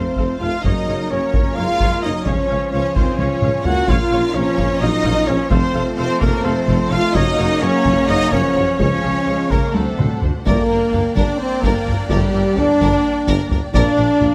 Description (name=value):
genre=cinematic, epic orchestral film score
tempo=257 BPM (eighths)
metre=7/8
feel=straight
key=G minor from 10.5 s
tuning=A4 = 436 Hz
part: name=warm symphonic violin section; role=melody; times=0.0-14.3 s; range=F4 to Gb5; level=-30 LUFS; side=equal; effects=none
part: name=warm symphonic violin section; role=second line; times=0.0-14.3 s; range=G4 to Gb5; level=-32 LUFS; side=equal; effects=none
part: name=rich symphonic viola section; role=accompaniment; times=0.0-14.3 s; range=G3 to F5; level=-32 LUFS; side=equal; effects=none
part: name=mellow French horn section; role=sustained chords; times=0.0-14.3 s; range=C3 to D4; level=-24 LUFS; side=equal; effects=none
part: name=mellow trombone section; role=sustained chords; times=0.0-13.9 s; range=F2 to F4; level=-30 LUFS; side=equal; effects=none
part: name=rich symphonic string section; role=sustained chords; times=0.0-14.3 s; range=Ab3 to G5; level=-30 LUFS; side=equal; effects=none
part: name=mellow trumpet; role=stabs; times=0.0-13.9 s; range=A4 to Gb5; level=-26 LUFS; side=equal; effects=none
part: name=dark symphonic cello section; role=bass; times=0.0-14.3 s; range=G2 to Gb4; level=-26 LUFS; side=equal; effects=none
part: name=dark symphonic double bass section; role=bass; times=0.0-14.3 s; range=F1 to Gb2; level=-27 LUFS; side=equal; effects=none
part: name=mellow tuba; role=bass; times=0.0-14.3 s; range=F1 to D2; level=-28 LUFS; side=equal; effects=none
part: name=taiko ensemble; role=drums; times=0.2-14.3 s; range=none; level=-24 LUFS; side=equal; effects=none
room=light reverb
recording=close, detailed microphones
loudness=-17 LUFS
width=mono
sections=0.0-10.5 A section; 10.5-14.3 B section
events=drum fill 3.2-3.9, 9.7-10.5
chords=0.0 F; 0.6 Gb; 2.3 Db; 3.9 Bbm; 5.5 F; 7.2 Gb; 8.8 Db; 9.7 D7; 10.5 Gm; 13.7 Bb